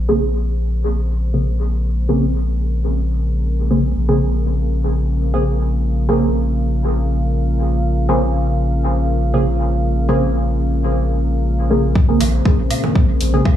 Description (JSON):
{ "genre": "dub techno", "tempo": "120 BPM", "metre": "4/4", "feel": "straight", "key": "Bb minor", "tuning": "A4 = 436 Hz", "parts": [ { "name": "dark analog pad", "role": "sustained chords", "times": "0.0-13.6 s", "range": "Db4 to F5", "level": "-24 LUFS", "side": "equal", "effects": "chorus, sidechain pumping" }, { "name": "soft dub sub bass", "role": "bass", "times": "0.0-13.4 s", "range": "Bb1 to Bb2", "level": "-18 LUFS", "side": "equal", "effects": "sidechain pumping" }, { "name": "deep mellow chord stab", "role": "stabs", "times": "0.1-13.4 s", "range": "Db3 to Ab4", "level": "-20 LUFS", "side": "right 1 dB", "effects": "chorus, phaser, sidechain pumping, dub echo" }, { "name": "electronic kick drum", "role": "drums", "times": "12.0-13.6 s", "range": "none", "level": "-14 LUFS", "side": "equal", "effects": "none" }, { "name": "electronic hi-hat", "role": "drums", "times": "12.2-13.3 s", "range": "none", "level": "-26 LUFS", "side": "left 2 dB", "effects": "none" }, { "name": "congas and woodblock", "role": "percussion", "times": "12.2-13.6 s", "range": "none", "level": "-26 LUFS", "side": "right 5 dB", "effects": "overdrive, sidechain pumping on perc, dub echo" } ], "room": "light reverb", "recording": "studio reverb", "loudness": "-15 LUFS", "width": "side -11 dB against mid", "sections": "0.0-12.0 A section; 12.0-13.6 B section", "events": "filter sweep on synth stab 0.0-12.0; filter sweep on analog synth pad 0.0-12.0", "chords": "0.0 Bbm9" }